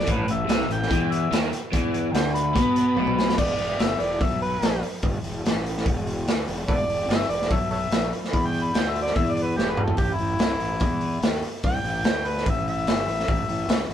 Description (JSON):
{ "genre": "blues rock power trio and southern rock", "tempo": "145 BPM", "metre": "4/4", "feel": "straight", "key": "unclear", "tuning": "A4 = 441 Hz", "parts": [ { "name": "overdriven harmonica", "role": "melody", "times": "0.0-13.9 s", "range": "E4 to B5", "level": "-27 LUFS", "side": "left 1 dB", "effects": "none" }, { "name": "crunchy overdriven guitar", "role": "riff", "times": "0.0-3.4 s", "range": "A2 to B3", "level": "-25 LUFS", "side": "equal", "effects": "none" }, { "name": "fuzz fingered electric bass", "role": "bass", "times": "0.0-13.9 s", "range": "E1 to B2", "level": "-28 LUFS", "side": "equal", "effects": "overdrive" }, { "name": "raw garage drum kit", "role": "drums", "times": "0.1-13.9 s", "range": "crash cymbal, hi-hat, kick drum, snare drum, toms", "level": "-25 LUFS", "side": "equal", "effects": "none" } ], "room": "light reverb", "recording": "band playing live in one room", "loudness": "-21 LUFS", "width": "side -10 dB against mid", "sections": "0.0-3.4 A section; 3.4-13.9 B section", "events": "drum fill 3.0-3.4, 9.6-10.0; harmonica solo 3.4-13.9", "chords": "0.1 A5; 1.7 G6; 2.6 N.C.; 3.4 E5; 10.0 A5; 13.3 A" }